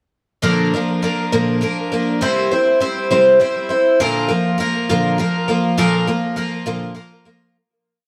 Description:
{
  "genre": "rock",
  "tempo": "67 BPM (dotted quarters)",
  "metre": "6/8",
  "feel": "straight",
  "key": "unclear",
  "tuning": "A4 = 440 Hz",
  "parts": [
    { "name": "picked twelve-string acoustic guitar", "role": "solo", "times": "0.4-7.6 s", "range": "Bb2 to C5", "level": "-17 LUFS", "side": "equal", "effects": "analog delay" }
  ],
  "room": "moderate large studio reverb, RT60 0.8 s",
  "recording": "none",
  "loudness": "-17 LUFS",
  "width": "mono",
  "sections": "0.4-7.6 pre-chorus",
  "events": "fade-out 5.8-7.6",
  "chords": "0.4 Bb; 2.2 C; 4.0 Bb"
}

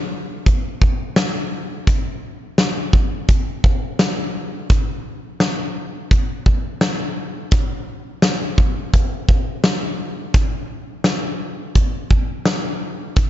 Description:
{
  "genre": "dream pop",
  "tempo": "85 BPM",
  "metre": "4/4",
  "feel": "straight",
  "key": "none",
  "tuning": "none",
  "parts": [
    { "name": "huge arena drum kit", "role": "drums", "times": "0.5-13.3 s", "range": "hi-hat, kick drum, snare drum, tambourine", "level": "-17 LUFS", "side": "equal", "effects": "none" }
  ],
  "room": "light reverb",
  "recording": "nothing above 7.6 kHz",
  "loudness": "-17 LUFS",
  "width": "side -12 dB against mid",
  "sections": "0.0-13.3 A section",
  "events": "none",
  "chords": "none"
}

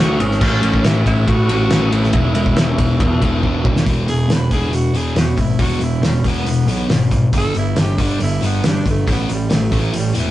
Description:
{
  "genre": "classic rock",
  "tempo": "138 BPM",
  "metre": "4/4",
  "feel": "straight",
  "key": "unclear",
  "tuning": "A4 = 438 Hz",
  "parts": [
    { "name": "growling tenor saxophone", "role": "melody", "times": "0.0-10.3 s", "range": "E3 to B4", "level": "-24 LUFS", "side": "right 2 dB", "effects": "none" },
    { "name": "sludgy distorted guitar", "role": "riff", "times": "0.0-10.3 s", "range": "E2 to D4", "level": "-20 LUFS", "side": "left 1 dB", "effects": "overdrive" },
    { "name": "fuzz picked electric bass", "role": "bass", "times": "0.0-10.3 s", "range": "E1 to A2", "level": "-19 LUFS", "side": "equal", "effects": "overdrive" },
    { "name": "cloth-damped thuddy drum kit", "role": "drums", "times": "0.2-10.3 s", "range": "crash cymbal, hi-hat, kick drum, ride cymbal, snare drum", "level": "-18 LUFS", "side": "equal", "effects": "none" }
  ],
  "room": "moderate studio ambience, RT60 0.5 s",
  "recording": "rough rehearsal-room recording, nothing above 10.4 kHz",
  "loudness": "-14 LUFS",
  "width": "side -14 dB against mid",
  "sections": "0.0-3.9 A section; 3.9-10.3 B section",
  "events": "drum fill 3.4-3.9; tenor saxophone solo 3.9-10.3",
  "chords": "0.4 A; 2.1 E5; 3.9 E; 7.3 G5; 9.1 A5"
}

